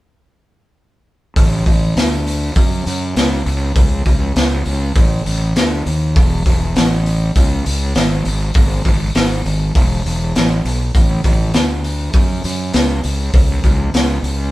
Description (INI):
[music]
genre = blues rock power trio and southern rock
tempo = 100 BPM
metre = 4/4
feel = straight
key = A major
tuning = A4 = 437 Hz
[part]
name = fuzz fingered electric bass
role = bass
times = 1.4-14.5 s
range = E1 to F#2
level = -17 LUFS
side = equal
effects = overdrive
[part]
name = raw garage drum kit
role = drums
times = 1.4-14.4 s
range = hi-hat, kick drum, snare drum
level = -15 LUFS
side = equal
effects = none
[sound]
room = light reverb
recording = band playing live in one room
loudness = -13 LUFS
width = side -17 dB against mid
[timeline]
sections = 1.4-14.5 A section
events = none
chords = none